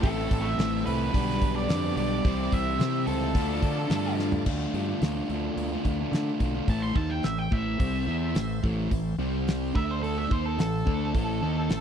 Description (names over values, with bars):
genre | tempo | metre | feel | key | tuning
classic rock | 108 BPM | 4/4 | straight | A minor | A4 = 440 Hz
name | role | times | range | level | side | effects
octave-fuzz lead guitar | melody | 0.0-11.8 s | A4 to C6 | -32 LUFS | right 2 dB | distortion, slapback echo
bright tonewheel organ | sustained chords | 0.0-11.8 s | G3 to D5 | -43 LUFS | equal | none
overdriven electric guitar | riff | 0.0-4.5 s | A2 to E4 | -33 LUFS | right 1 dB | none
sludgy distorted guitar | riff | 0.0-11.8 s | G2 to F4 | -32 LUFS | left 13 dB | overdrive
sludgy distorted guitar | riff | 0.0-11.8 s | A2 to C5 | -32 LUFS | right 16 dB | overdrive
growling fingered electric bass | bass | 0.0-11.8 s | A1 to D3 | -31 LUFS | equal | overdrive
damped 70s drum kit | drums | 0.0-11.8 s | crash cymbal, hi-hat, kick drum, snare drum, toms | -28 LUFS | equal | none
room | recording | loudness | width
little or no reverb | dry, close 1970s-style studio recording | -24 LUFS | side -8 dB against mid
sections
0.0-4.5 A section; 4.5-6.7 B section; 6.7-11.8 C section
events
drum fill 4.2; lead electric guitar solo 6.7-11.8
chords
0.0 Am; 1.1 G/B; 2.2 C; 3.4 Dm; 6.7 Am; 9.2 C5; 9.8 D5; 10.3 Am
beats
| 0.04 0.59 1.15 1.70 | 2.25 2.80 3.35 3.91 | 4.46 5.02 5.57 6.13 | 6.69 7.24 7.80 8.36 | 8.91 9.47 10.03 10.59 | 11.15 11.71